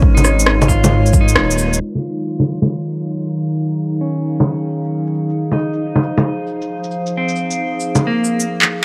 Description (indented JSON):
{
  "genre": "future garage",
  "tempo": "135 BPM",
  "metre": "4/4",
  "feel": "swing 67% on 16ths",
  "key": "Eb dorian",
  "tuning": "A4 = 440 Hz",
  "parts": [
    { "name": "clean electric guitar", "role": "accompaniment", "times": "0.0-8.4 s", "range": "Bb3 to F4", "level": "-25 LUFS", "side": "equal", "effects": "vintage 12-bit sampler grit, sidechain pumping, dub echo" },
    { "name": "warbly tape-like pad", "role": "sustained chords", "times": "0.0-8.8 s", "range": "Eb3 to F5", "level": "-23 LUFS", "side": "equal", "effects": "chorus, built-in reverb, sidechain pumping" },
    { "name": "dark detuned saw bass", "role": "bass", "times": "0.0-1.8 s", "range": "Eb1 to Ab2", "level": "-18 LUFS", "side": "equal", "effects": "sidechain pumping" },
    { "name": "electronic kick drum", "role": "drums", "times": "0.0-1.3 s", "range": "none", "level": "-16 LUFS", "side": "equal", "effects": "none" },
    { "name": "electronic bongos, shaker, rim click, cabasa and handclaps", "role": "drums", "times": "0.2-8.7 s", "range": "none", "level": "-18 LUFS", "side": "equal", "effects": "overdrive" }
  ],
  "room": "light reverb, digital ambience",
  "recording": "low-pass filter",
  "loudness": "-17 LUFS",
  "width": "mono",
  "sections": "0.0-1.8 A section; 1.8-8.8 B section",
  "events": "break 1.4-1.8; band accent 1.4; filter sweep 1.8-8.8; drum fill 8.6",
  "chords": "0.0 Absus24; 1.8 Ebm11; 5.4 Fm7"
}